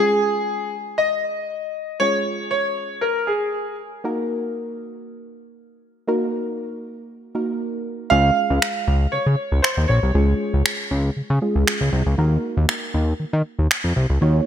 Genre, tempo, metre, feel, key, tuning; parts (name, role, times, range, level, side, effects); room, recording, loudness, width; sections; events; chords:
dance-pop; 118 BPM; 4/4; straight; Db major; A4 = 440 Hz
clear concert grand piano; melody; 0.0-3.7, 8.1-10.6 s; Ab4 to F5; -21 LUFS; equal; analog chorus, digital delay
soft round pluck; accompaniment; 0.0-14.5 s; Ab3 to Db5; -26 LUFS; right 1 dB; chorus
fat analog bass; bass; 8.1-14.4 s; Bb1 to Eb3; -18 LUFS; equal
electronic finger snaps; drums; 8.6-13.8 s; -22 LUFS; right 1 dB; overdrive, gated reverb
moderate lush hall reverb, RT60 1.9 s; bright 1980s-style digital production; -19 LUFS; side -10 dB against mid
0.0-14.5 A section
0.0 Db; 4.0 Ebm; 8.1 Db; 12.2 Ebm